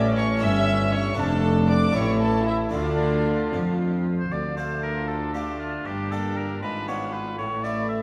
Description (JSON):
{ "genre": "classical, baroque-style concerto movement with solo episodes", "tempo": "78 BPM (dotted quarters)", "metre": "6/8", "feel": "straight", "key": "D minor", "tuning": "A4 = 445 Hz", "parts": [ { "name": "warm chamber violin section", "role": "second line", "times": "0.0-8.0 s", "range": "D4 to E5", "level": "-33 LUFS", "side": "equal", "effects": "none" }, { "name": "harpsichord", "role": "accompaniment", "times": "0.0-8.0 s", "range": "D2 to G4", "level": "-34 LUFS", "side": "equal", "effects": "none" }, { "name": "warm chamber viola section", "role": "accompaniment", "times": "0.0-8.0 s", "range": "A3 to F4", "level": "-34 LUFS", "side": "equal", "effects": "none" }, { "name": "rich chamber cello section", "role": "bass", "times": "0.0-8.0 s", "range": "D2 to F3", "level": "-30 LUFS", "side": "equal", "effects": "none" }, { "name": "rich chamber double bass section", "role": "bass", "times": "0.0-8.0 s", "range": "F1 to F2", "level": "-30 LUFS", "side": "equal", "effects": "none" }, { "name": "rich chamber violin section", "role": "melody", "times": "0.2-8.0 s", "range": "D5 to E6", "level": "-36 LUFS", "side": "equal", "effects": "none" }, { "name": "clear oboe", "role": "melody", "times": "4.2-8.0 s", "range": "F4 to E5", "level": "-32 LUFS", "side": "equal", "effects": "none" } ], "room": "wet scoring stage reverb, RT60 1.7 s", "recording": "none", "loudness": "-24 LUFS", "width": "mono", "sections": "0.0-4.3 A section; 4.3-8.0 B section", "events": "none", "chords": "0.4 A7/G; 1.2 Dm/F; 2.0 A5; 2.7 Dm; 5.9 Gm; 6.6 G#dim7; 7.4 A5" }